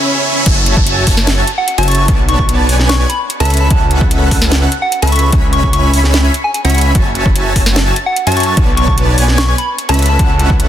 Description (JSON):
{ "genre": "future bass", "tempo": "148 BPM", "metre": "4/4", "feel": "half-time", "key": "F# minor", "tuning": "A4 = 440 Hz", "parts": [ { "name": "dense compressed supersaw", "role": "riff", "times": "0.0-10.7 s", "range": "B3 to B5", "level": "-18 LUFS", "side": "right 1 dB", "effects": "sidechain pumping" }, { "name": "riser and downlifter", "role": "sound effects", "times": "0.0-3.7 s", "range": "none", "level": "-20 LUFS", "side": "equal", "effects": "none" }, { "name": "airy dreamy lead", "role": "arpeggios", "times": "0.5-10.7 s", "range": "F#5 to B5", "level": "-22 LUFS", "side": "equal", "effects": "chorus, sidechain pumping, ping-pong delay" }, { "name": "wide detuned saw bass", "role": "bass", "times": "0.5-10.7 s", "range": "F#1 to F#2", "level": "-13 LUFS", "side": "equal", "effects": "chorus, sidechain pumping" }, { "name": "electronic kick drum", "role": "drums", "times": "0.5-10.6 s", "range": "none", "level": "-14 LUFS", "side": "equal", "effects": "overdrive" }, { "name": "trap drum kit", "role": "drums", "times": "0.5-10.7 s", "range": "crash cymbal, hi-hat, snare drum", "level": "-18 LUFS", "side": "equal", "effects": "none" }, { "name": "soft struck synth lead", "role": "melody", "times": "1.6-10.5 s", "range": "F#5 to C#6", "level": "-18 LUFS", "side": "left 1 dB", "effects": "chorus, sidechain pumping, tape echo" } ], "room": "little or no reverb", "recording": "dense, heavily limited modern master", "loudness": "-10 LUFS", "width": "side -11 dB against mid", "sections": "0.5-10.7 A section", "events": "break 0.0-0.5; riser 0.0-0.5; drop 0.5-10.7", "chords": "0.5 F#m9; 2.1 Bm9; 3.5 A69/C#; 5.3 C#m7; 6.9 F#m9; 8.6 Bm9; 10.0 A69/C#", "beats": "0.06 | 0.46 0.87 1.27 1.68 | 2.08 2.49 2.90 3.30 | 3.71 4.11 4.52 4.92 | 5.33 5.73 6.14 6.54 | 6.95 7.36 7.76 8.17 | 8.57 8.98 9.38 9.79 | 10.19 10.60" }